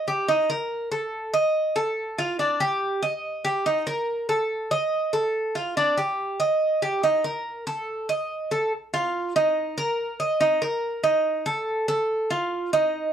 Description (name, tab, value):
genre	latin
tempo	142 BPM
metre	4/4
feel	straight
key	unclear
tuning	A4 = 440 Hz
part	Cuban tres	solo	0.0-13.1 s	D4 to Eb5	-22 LUFS	right 1 dB	none
room	moderate studio reverb, RT60 0.7 s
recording	dark, warm production, faint mains hum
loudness	-22 LUFS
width	side -9 dB against mid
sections	0.0-8.7 A section; 8.7-13.1 B section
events	none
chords	none